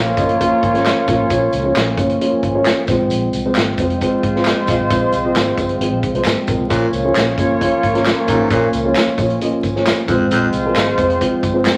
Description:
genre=uptempo 1960s-style soul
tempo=133 BPM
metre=4/4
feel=straight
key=Bb minor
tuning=A4 = 435 Hz
part: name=warm horn section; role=second line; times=0.0-11.8 s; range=Ab3 to Db5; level=-23 LUFS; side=equal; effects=none
part: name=dark upright piano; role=accompaniment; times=0.0-11.7 s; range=Ab3 to Eb5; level=-22 LUFS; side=equal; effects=none
part: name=percussive tonewheel organ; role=sustained chords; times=0.0-11.8 s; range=F3 to Db4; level=-24 LUFS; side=equal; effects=slow rotary speaker, overdrive
part: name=vintage muted fingered electric bass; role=bass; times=0.0-11.7 s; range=F1 to Db2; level=-27 LUFS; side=equal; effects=none
part: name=vintage drum kit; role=drums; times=0.2-11.8 s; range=hi-hat, kick drum, snare drum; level=-23 LUFS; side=equal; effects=none
part: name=tambourine and handclaps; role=percussion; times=0.2-11.8 s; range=none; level=-28 LUFS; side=equal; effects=none
part: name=raspy baritone saxophone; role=riff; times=6.7-10.5 s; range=F2 to Bb2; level=-22 LUFS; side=equal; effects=none
room=wet large studio reverb, RT60 0.9 s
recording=vinyl crackle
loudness=-16 LUFS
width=mono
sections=0.0-11.8 A section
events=none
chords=0.0 Bbm; 2.9 Fm; 6.7 Bbm; 10.1 Fm

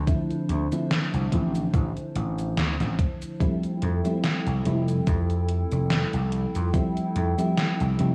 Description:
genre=vaporwave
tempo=72 BPM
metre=4/4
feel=swing 55% on 16ths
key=F major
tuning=A4 = 439 Hz
part: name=mellow FM electric piano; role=accompaniment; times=0.0-8.1 s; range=D3 to E4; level=-30 LUFS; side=equal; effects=ensemble chorus, tape echo
part: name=warbly tape-like pad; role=sustained chords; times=0.0-8.1 s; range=D4 to G5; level=-37 LUFS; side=equal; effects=chorus, built-in reverb, vintage 12-bit sampler grit
part: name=vintage slap bass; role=bass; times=0.0-8.1 s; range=F1 to F2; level=-28 LUFS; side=equal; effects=tube saturation
part: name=electronic kick drum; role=drums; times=0.1-6.9 s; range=none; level=-27 LUFS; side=equal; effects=overdrive
part: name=gated 80s digital drum machine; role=drums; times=0.1-8.1 s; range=cabasa, hi-hat, snare drum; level=-31 LUFS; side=equal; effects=gated reverb, gated reverb snare, overdrive
room=light reverb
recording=cassette tape, studio ambience, faint mains hum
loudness=-25 LUFS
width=mono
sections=0.0-8.1 A section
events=none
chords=0.0 Dm7; 3.4 Fmaj9

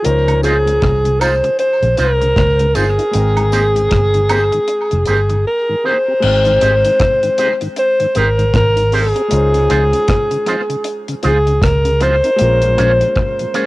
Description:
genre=lovers rock reggae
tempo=78 BPM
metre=4/4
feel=swing 60% on 16ths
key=Ab major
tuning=A4 = 443 Hz
part: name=warm alto saxophone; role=melody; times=0.0-13.7 s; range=Ab4 to C5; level=-14 LUFS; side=equal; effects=cassette tape, tape echo
part: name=clear grand piano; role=accompaniment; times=0.0-13.7 s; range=F3 to G5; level=-26 LUFS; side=left 3 dB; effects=none
part: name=deep reggae drum kit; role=drums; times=0.0-13.7 s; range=crash cymbal, hi-hat, kick drum, rim click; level=-20 LUFS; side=equal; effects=none
part: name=vintage muted fingered electric bass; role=bass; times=0.1-13.0 s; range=F1 to Db2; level=-16 LUFS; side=equal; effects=none
part: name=mellow tonewheel organ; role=accompaniment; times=0.3-13.6 s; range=Ab2 to G4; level=-25 LUFS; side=left 2 dB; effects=chorus vibrato, slow rotary speaker
part: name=woodblock and tambourine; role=percussion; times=0.3-5.3 s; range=none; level=-24 LUFS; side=right 4 dB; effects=tape echo
part: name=electric guitar with an envelope filter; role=stabs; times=0.4-13.7 s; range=Ab3 to Db5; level=-20 LUFS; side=right 3 dB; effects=tremolo, plate reverb
room=light reverb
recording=home recording on cassette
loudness=-12 LUFS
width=side -19 dB against mid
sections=0.0-6.2 A section; 6.2-13.7 B section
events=none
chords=0.0 Dbmaj9; 3.1 Abmaj9; 6.2 Abmaj7; 9.3 Dbmaj9; 12.4 Bbm7

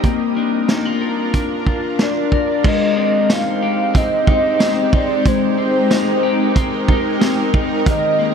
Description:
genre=dream pop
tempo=92 BPM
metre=4/4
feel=straight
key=unclear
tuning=A4 = 439 Hz
part: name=shimmering ambient pad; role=sustained chords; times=0.0-8.3 s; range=Ab3 to C5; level=-20 LUFS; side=equal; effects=chorus, built-in reverb
part: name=electric guitar at the edge of break-up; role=arpeggios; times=0.0-8.3 s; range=Eb3 to Bb4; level=-20 LUFS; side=left 6 dB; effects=lush chorus, ping-pong delay
part: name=vintage drum kit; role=drums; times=0.0-8.0 s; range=crash cymbal, hi-hat, kick drum, snare drum, tambourine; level=-17 LUFS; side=right 1 dB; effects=none
part: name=warbly nostalgic lead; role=melody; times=2.0-8.3 s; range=C5 to F5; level=-19 LUFS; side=right 1 dB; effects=chorus, tremolo, ping-pong delay
room=moderate concert hall reverb, RT60 2.2 s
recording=none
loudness=-14 LUFS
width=side -6 dB against mid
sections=0.0-2.6 A section; 2.6-8.3 B section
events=none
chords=0.0 Bb; 2.6 Abmaj7

